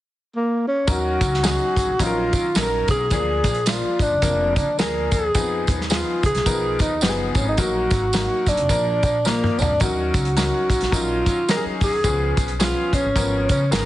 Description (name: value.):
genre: uptempo 1960s-style soul.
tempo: 107 BPM.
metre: 4/4.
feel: swing 59% on 8ths.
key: Eb minor.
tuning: A4 = 441 Hz.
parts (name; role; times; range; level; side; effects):
breathy tenor saxophone; melody; 0.4-13.9 s; Bb3 to Bb4; -22 LUFS; equal; none.
bright upright piano; accompaniment; 0.9-13.9 s; Eb3 to Bb4; -26 LUFS; left 4 dB; none.
upright bass; bass; 0.9-13.9 s; F1 to Eb3; -26 LUFS; equal; none.
warm soul drum kit; drums; 0.9-13.9 s; hi-hat, kick drum, snare drum, toms; -22 LUFS; equal; none.
tambourine; percussion; 0.9-13.9 s; none; -32 LUFS; right 6 dB; none.
room: light reverb, small room ambience.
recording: heavily compressed radio sound, multiband compression, nothing above 11.0 kHz.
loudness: -18 LUFS.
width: side -14 dB against mid.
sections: 0.9-13.9 A section.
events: drum fill 9.3-9.8.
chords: 0.0 N.C.; 0.9 Ebm7; 3.1 Bb7; 5.3 Fm7b5; 7.6 Ebm; 8.7 Bb; 9.8 Ebm7; 12.0 Db7.